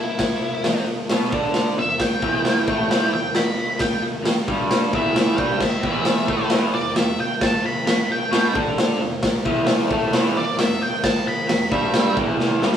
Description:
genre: garage rock duo or trio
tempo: 133 BPM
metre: 4/4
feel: straight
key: E minor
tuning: A4 = 440 Hz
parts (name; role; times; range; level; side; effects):
- octave-fuzz lead guitar; melody; 0.0-12.2 s; E4 to B5; -25 LUFS; equal; distortion
- raw garage drum kit; drums; 0.2-12.8 s; crash cymbal, hi-hat, kick drum, snare drum; -21 LUFS; equal; none
- raw garage guitar; riff; 0.7-12.8 s; E2 to D4; -22 LUFS; right 1 dB; overdrive
room: moderate stone room reverb, RT60 1.0 s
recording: rough rehearsal-room recording, small room ambience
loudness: -18 LUFS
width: side -9 dB against mid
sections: 0.0-12.8 A section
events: lead electric guitar solo 0.0-12.8; drum fill 12.4-12.8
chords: 0.0 Em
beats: | 0.18 0.64 1.09 1.54 | 1.99 2.44 2.90 3.35 | 3.80 4.25 4.71 5.16 | 5.61 6.06 6.51 6.96 | 7.41 7.87 8.32 8.77 | 9.22 9.67 10.12 10.58 | 11.03 11.48 11.94 12.39

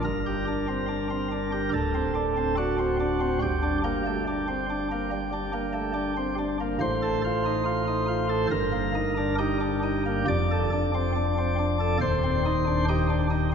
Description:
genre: classical, chorale-style piece for pipe organ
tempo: 71 BPM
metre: 4/4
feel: rubato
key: unclear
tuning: A4 = 440 Hz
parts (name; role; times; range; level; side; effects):
- chamber organ, sparkling flutes; solo; 0.0-13.5 s; D1 to D5; -24 LUFS; equal; none
room: wet church reverb, RT60 3.5 s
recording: recorded in a church or concert hall, nothing above 7.8 kHz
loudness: -24 LUFS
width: side -7 dB against mid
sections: 0.0-13.5 A section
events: none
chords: 0.0 Gm; 1.7 D7; 3.4 Gm; 6.8 F/A; 8.5 Eb/G; 10.3 Dm/F; 12.0 Cm/Eb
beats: | 0.04 0.89 1.73 2.58 | 3.42 4.26 5.11 5.96 | 6.81 7.66 8.51 9.38 | 10.27 11.15 12.01 12.87

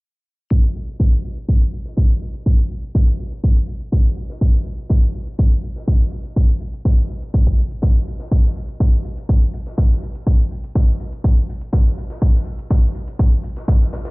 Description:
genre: piano house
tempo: 123 BPM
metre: 4/4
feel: straight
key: none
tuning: none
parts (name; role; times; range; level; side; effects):
- electronic hi-hat; drums; 0.5-14.1 s; none; -61 LUFS; right 2 dB; none
- electronic kick drum; drums; 0.5-13.8 s; none; -15 LUFS; equal; none
- oversized low-tuned drum kit; drums; 0.5-14.1 s; hi-hat, snare drum; -39 LUFS; equal; high-pass filter on hats, high-pass filter on snare, high-pass filter on room
room: little or no reverb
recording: played on a big sound system in a bare room, large studio reverb, low-pass filter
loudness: -16 LUFS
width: side -26 dB against mid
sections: 0.5-14.1 A section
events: none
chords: none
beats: | 0.51 1.00 1.49 1.97 | 2.46 2.95 3.44 3.92 | 4.41 4.90 5.39 5.88 | 6.36 6.85 7.34 7.83 | 8.32 8.80 9.29 9.78 | 10.27 10.76 11.24 11.73 | 12.22 12.71 13.19 13.68

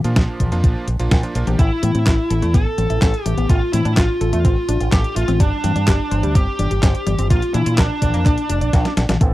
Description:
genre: italo disco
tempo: 126 BPM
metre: 4/4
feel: straight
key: unclear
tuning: A4 = 442 Hz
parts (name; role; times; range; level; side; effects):
- bright electric grand piano; stabs; 0.0-1.6, 9.2-9.3 s; F3 to A4; -27 LUFS; right 2 dB; low-pass filter, tape echo
- fingered electric bass with an envelope filter; bass; 0.0-9.3 s; F1 to Bb2; -20 LUFS; equal; tube saturation
- clean 12-bit digital drum machine; drums; 0.0-9.3 s; handclaps, hi-hat, snare drum, toms; -22 LUFS; left 2 dB; overdrive
- electronic kick drum; drums; 0.2-9.3 s; none; -16 LUFS; equal; overdrive
- smooth overdriven lead guitar; melody; 1.6-8.9 s; D4 to A4; -22 LUFS; equal; tape echo
- analog pluck; arpeggios; 1.6-9.2 s; G3 to D5; -27 LUFS; left 2 dB; chorus, vintage 12-bit sampler grit, tape echo
room: little or no reverb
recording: dry, close 1970s-style studio recording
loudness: -15 LUFS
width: side -16 dB against mid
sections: 0.0-9.2 A section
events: drum fill 8.7-9.2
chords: 0.0 Bb; 1.6 A5; 3.5 Dm/A (rootless); 5.4 Gsus4; 7.3 Bb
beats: 0.16 0.64 1.11 | 1.59 2.07 2.54 3.02 | 3.50 3.97 4.45 4.92 | 5.40 5.88 6.35 6.83 | 7.30 7.78 8.26 8.73 | 9.21

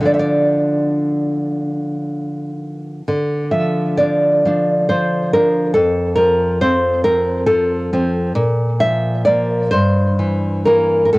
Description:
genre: romantic piece for solo classical guitar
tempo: 38-47 BPM (dotted quarters)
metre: 6/8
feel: rubato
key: D minor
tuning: A4 = 439 Hz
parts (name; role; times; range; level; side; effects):
- nylon-string guitar; solo; 0.0-11.2 s; F2 to E5; -14 LUFS; equal; cassette tape
room: wet booth ambience, RT60 0.2 s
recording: home recording on cassette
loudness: -14 LUFS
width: side -21 dB against mid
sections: 0.0-3.1 A section; 3.1-11.2 A section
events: none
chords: 0.0 Dm; 5.8 F; 8.4 Bb5; 9.7 Edim/G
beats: | 0.05 1.55 | 3.07 4.45 | 5.77 7.05 | 8.36 9.72 | 11.12

